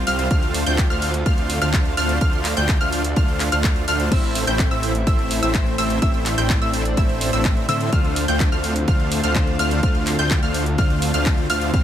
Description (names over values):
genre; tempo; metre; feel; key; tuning
EDM, festival progressive house; 126 BPM; 4/4; straight; D minor; A4 = 441 Hz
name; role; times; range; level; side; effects
lush unison pad; sustained chords; 0.0-11.8 s; C3 to G4; -29 LUFS; right 2 dB; chorus, sidechain pumping
wide unison pluck; arpeggios; 0.0-11.8 s; E6 to G6; -26 LUFS; equal; sidechain pumping, tape echo
dense compressed supersaw; riff; 0.0-11.8 s; G3 to G5; -25 LUFS; right 1 dB; sidechain pumping, tape echo
detuned saw bass; bass; 0.0-11.8 s; A1 to A2; -25 LUFS; equal; sidechain pumping
big-room dance drum kit; drums; 0.1-11.8 s; crash cymbal, handclaps, hi-hat; -28 LUFS; equal; overdrive
electronic kick drum; drums; 0.3-11.8 s; none; -19 LUFS; equal; overdrive
clean electric guitar; accompaniment; 4.1-11.8 s; A2 to E5; -27 LUFS; left 4 dB; spring reverb, sidechain pumping, tape echo
room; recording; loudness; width
little or no reverb; none; -17 LUFS; side -10 dB against mid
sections
0.0-11.8 A section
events
none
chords
0.3 Dm7; 4.1 Am; 7.9 Dm7